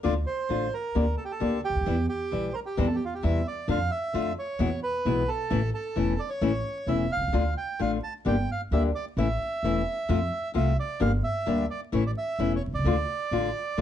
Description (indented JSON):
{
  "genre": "tango",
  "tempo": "131 BPM",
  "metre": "4/4",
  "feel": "rubato",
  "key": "D minor",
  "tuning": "A4 = 442 Hz",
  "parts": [
    { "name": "bandoneon", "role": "melody", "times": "0.0-13.8 s", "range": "F4 to A5", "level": "-31 LUFS", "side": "right 3 dB", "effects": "none" },
    { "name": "nylon-string guitar", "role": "accompaniment", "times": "0.0-13.8 s", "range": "B2 to G4", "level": "-28 LUFS", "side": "left 5 dB", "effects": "none" },
    { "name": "upright bass", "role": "bass", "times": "0.0-13.8 s", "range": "E1 to F2", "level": "-28 LUFS", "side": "right 1 dB", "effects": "none" }
  ],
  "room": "moderate club reverb, RT60 0.6 s",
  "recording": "dark, warm production, vinyl crackle, nothing above 10.6 kHz",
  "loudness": "-25 LUFS",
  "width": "side -10 dB against mid",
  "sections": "0.0-13.8 A section",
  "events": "none",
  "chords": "0.0 Dm; 1.0 Gm/D; 1.9 Edim; 2.8 C/E; 3.7 Dm/F; 4.6 E; 5.5 A; 7.3 Dm; 8.3 Gm; 9.2 A; 10.1 F; 11.0 Gm; 11.9 A; 12.8 Dm",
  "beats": "| 0.04 0.50 0.95 1.41 | 1.86 2.32 2.77 3.23 | 3.68 4.14 4.59 5.05 | 5.50 5.96 6.42 6.88 | 7.34 7.80 8.26 8.71 | 9.17 9.63 10.09 10.55 | 11.01 11.46 11.93 12.38 | 12.85 13.31 13.77"
}